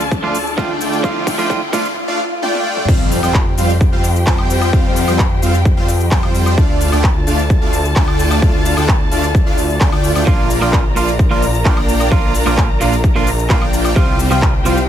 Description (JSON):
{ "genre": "EDM, festival progressive house", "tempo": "130 BPM", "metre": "4/4", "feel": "straight", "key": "F major", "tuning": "A4 = 437 Hz", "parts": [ { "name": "clean electric guitar", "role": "accompaniment", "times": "0.0-1.9, 10.3-14.8 s", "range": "Bb2 to F4", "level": "-21 LUFS", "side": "right 4 dB", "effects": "sidechain pumping, tape echo" }, { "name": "dark symphonic string section", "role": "sustained chords", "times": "0.0-14.9 s", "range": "F4 to Bb5", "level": "-23 LUFS", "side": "left 1 dB", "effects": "sidechain pumping" }, { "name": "wide detuned saw bass", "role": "bass", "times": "0.0-14.9 s", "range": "Bb1 to F2", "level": "-18 LUFS", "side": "equal", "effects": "chorus, sidechain pumping" }, { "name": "big-room dance drum kit", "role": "drums", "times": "0.0-14.9 s", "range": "crash cymbal, handclaps, hi-hat, shaker, toms, woodblock", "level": "-23 LUFS", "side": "left 1 dB", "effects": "overdrive" }, { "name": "riser, swell and impact", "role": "sound effects", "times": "0.0-4.7 s", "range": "none", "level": "-25 LUFS", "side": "right 1 dB", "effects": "none" }, { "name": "electronic kick drum", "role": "drums", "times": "0.1-14.5 s", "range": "none", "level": "-15 LUFS", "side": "equal", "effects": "overdrive" }, { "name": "supersaw chords", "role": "riff", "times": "0.2-14.8 s", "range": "G3 to G5", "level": "-19 LUFS", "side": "equal", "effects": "lush chorus, sidechain pumping, tape echo" } ], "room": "little or no reverb", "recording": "high-pass filter", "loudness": "-12 LUFS", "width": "side -10 dB against mid", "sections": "0.0-2.9 A section; 2.9-14.9 B section", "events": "build-up 0.0-2.9; drum fill 0.0-2.0, 2.4-2.9; riser 0.0-2.0; swell 2.0-2.9; drop 2.9-14.9; impact 2.9-4.7", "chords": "0.0 Dm; 2.9 Fsus2; 6.6 Dm; 10.3 Bb; 14.0 Csus4" }